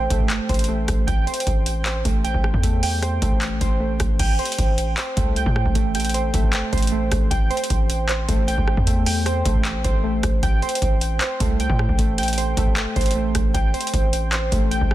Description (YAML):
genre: hip hop, trap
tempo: 154 BPM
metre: 4/4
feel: half-time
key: A minor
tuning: A4 = 441 Hz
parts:
  - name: warbly lo-fi synth keys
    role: arpeggios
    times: 0.0-14.9 s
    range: A3 to G5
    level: -24 LUFS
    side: right 2 dB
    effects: chorus, digital delay
  - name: distorted 808-style bass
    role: bass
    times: 0.0-14.9 s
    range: A1 to A2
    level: -24 LUFS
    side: equal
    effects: distortion
  - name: booming analog drum machine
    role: drums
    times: 0.1-14.9 s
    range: crash cymbal, handclaps, hi-hat, kick drum, rim click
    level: -21 LUFS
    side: equal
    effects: none
room: little or no reverb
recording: dense, heavily limited modern master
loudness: -18 LUFS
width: side -14 dB against mid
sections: 0.0-4.2 A section; 4.2-14.9 B section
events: none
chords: 0.0 Am7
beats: 0.30 0.69 | 1.08 1.47 1.86 2.25 | 2.64 3.03 3.42 3.81 | 4.20 4.58 4.97 5.36 | 5.75 6.14 6.53 6.92 | 7.31 7.70 8.09 8.48 | 8.87 9.26 9.65 10.04 | 10.43 10.82 11.21 11.60 | 11.99 12.38 12.77 13.16 | 13.54 13.94 14.32 14.71